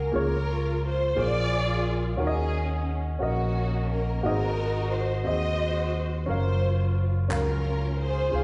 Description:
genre	slow gospel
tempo	59 BPM (dotted quarters)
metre	6/8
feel	straight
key	unclear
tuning	A4 = 439 Hz
part	warm studio string section	melody	0.0-8.4 s	Bb3 to Eb5	-32 LUFS	equal	none
part	warm upright piano	accompaniment	0.0-8.4 s	Ab2 to F5	-34 LUFS	equal	none
part	fingered electric bass	bass	0.0-8.4 s	Gb1 to Eb2	-29 LUFS	equal	none
part	group handclap	percussion	7.3-7.6 s	none	-40 LUFS	equal	none
room	wet recital hall reverb, RT60 1.4 s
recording	recorded in a church or concert hall, nothing above 11.0 kHz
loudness	-27 LUFS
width	mono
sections	0.0-8.4 A section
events	none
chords	0.2 Db6; 1.2 Bb7; 2.2 Ebm7; 4.2 Ab7; 6.3 Gbmaj7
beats	| 0.15 1.18 | 2.20 3.22 | 4.24 5.26 | 6.29 7.31 | 8.33

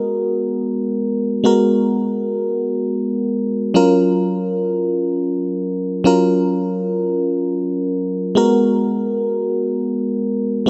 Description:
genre	R&B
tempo	free time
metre	none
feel	none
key	G# dorian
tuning	A4 = 440 Hz
part	FM electric piano	solo	0.0-10.7 s	F#3 to A#4	-18 LUFS	equal	chorus
room	light reverb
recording	none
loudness	-19 LUFS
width	mono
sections	0.0-10.7 A section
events	none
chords	0.0 G#m9; 3.7 F#maj7; 8.4 G#m9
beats	free time

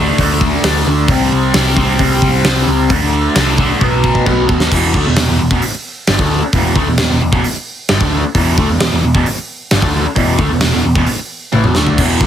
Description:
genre	hard rock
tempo	132 BPM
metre	4/4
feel	straight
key	E minor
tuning	A4 = 440 Hz
part	overdriven electric guitar	riff	0.0-12.3 s	E2 to D4	-14 LUFS	equal	phaser
part	hollow-body short-scale picked electric bass	bass	0.0-12.3 s	E1 to D#2	-17 LUFS	equal	none
part	gated 80s drum kit	drums	0.2-12.3 s	crash cymbal, hi-hat, kick drum, snare drum, toms	-16 LUFS	equal	none
room	light reverb, studio ambience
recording	heavily compressed radio sound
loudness	-11 LUFS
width	side -10 dB against mid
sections	0.0-4.7 A section; 4.7-12.0 B section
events	drum fill 3.8-4.7, 11.5-12.0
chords	0.0 D5; 1.1 C5; 2.9 D5; 3.8 B; 4.7 E5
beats	0.19 0.65 | 1.10 1.55 2.00 2.46 | 2.91 3.36 3.81 4.27 | 4.72 5.18 5.63 6.08 | 6.54 6.99 7.45 7.90 | 8.36 8.81 9.26 9.72 | 10.17 10.63 11.08 11.54 | 11.99

